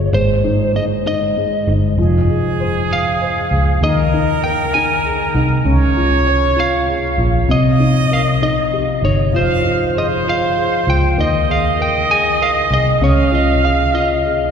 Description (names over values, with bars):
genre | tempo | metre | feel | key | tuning
six-eight pop ballad | 65 BPM (dotted quarters) | 6/8 | straight | F minor | A4 = 439 Hz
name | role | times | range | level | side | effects
lightly driven lead guitar | melody | 0.0-14.5 s | C5 to Ab5 | -19 LUFS | equal | none
felt-muted upright piano | accompaniment | 0.0-14.5 s | C3 to Db5 | -20 LUFS | left 2 dB | none
vintage muted fingered electric bass | bass | 0.0-14.5 s | F1 to Eb2 | -17 LUFS | equal | none
trumpet with plunger mute | second line | 2.0-14.5 s | Ab4 to F5 | -20 LUFS | right 3 dB | none
room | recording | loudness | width
wet cathedral reverb, RT60 6.0 s | recorded in a church or concert hall | -13 LUFS | side -7 dB against mid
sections
0.0-14.5 A section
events
none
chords
0.1 Ab; 2.0 Fm; 3.8 Ebsus4; 5.7 Db; 7.5 Cm7; 9.3 Fm; 11.2 Ebsus4; 13.0 Dbadd9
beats
| 0.13 1.05 | 1.98 2.90 | 3.82 4.74 | 5.65 6.57 | 7.48 8.41 | 9.34 10.26 | 11.18 12.10 | 13.02 13.93